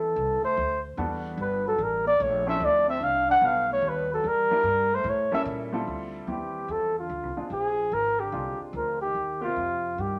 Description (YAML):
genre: jazz, small-group swing and bop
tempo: 147 BPM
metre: 4/4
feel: swing 67% on 8ths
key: D minor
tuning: A4 = 440 Hz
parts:
  - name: trumpet with bucket mute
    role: melody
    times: 0.0-10.2 s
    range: F4 to F#5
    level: -27 LUFS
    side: equal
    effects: none
  - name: breathy trombone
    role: second line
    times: 0.0-10.2 s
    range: C3 to D4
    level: -41 LUFS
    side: equal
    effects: none
  - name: upright bass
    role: bass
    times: 0.0-10.2 s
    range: G1 to Bb2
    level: -39 LUFS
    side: equal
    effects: none
  - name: clear upright piano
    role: accompaniment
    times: 1.0-9.5 s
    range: D3 to Bb4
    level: -36 LUFS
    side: equal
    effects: none
room: wet studio reverb, RT60 0.9 s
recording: none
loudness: -26 LUFS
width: mono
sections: 0.0-5.9 A section; 5.9-10.2 B section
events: none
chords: 0.0 Am; 1.0 Em11; 1.8 A5; 2.6 Dm9; 3.4 B7b13; 4.2 Em7b5; 5.0 A7b9; 5.9 Dm11; 7.5 Bb7; 9.1 Eb69